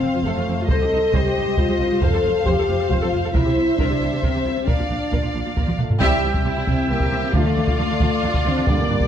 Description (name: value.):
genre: cinematic, epic orchestral film score.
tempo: 135 BPM.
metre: 3/4.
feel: straight.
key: unclear.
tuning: A4 = 444 Hz.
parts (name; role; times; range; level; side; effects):
rich symphonic violin section; melody; 0.0-9.1 s; D5 to F5; -29 LUFS; left 2 dB; none.
rich symphonic violin section; second line; 0.0-9.1 s; E4 to D5; -28 LUFS; left 2 dB; none.
warm symphonic viola section; accompaniment; 0.0-9.1 s; A3 to E5; -30 LUFS; right 2 dB; none.
dark French horn section; sustained chords; 0.0-9.1 s; G3 to A4; -22 LUFS; left 3 dB; none.
rich symphonic cello section; bass; 0.0-9.1 s; C2 to D3; -27 LUFS; right 3 dB; none.
rich symphonic double bass section; bass; 0.0-8.9 s; F1 to D2; -27 LUFS; right 4 dB; none.
solo taiko drums; drums; 0.7-9.1 s; none; -23 LUFS; equal; none.
clear woodwind section; sustained chords; 6.0-9.1 s; G3 to G5; -29 LUFS; right 1 dB; none.
warm trombone section; sustained chords; 6.0-8.8 s; D3 to E4; -30 LUFS; right 2 dB; none.
timpani; percussion; 7.3-9.1 s; G2 to D3; -28 LUFS; equal; none.
room: moderate recital hall reverb, RT60 1.4 s.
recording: dark, warm production.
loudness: -17 LUFS.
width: side -9 dB against mid.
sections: 0.0-6.0 A section; 6.0-9.1 B section.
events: drum fill 5.7-6.0; band accent 6.0-6.5.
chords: 0.0 F; 0.7 Cm; 2.0 F; 3.4 C; 4.7 Bb; 6.0 C; 7.3 Dm.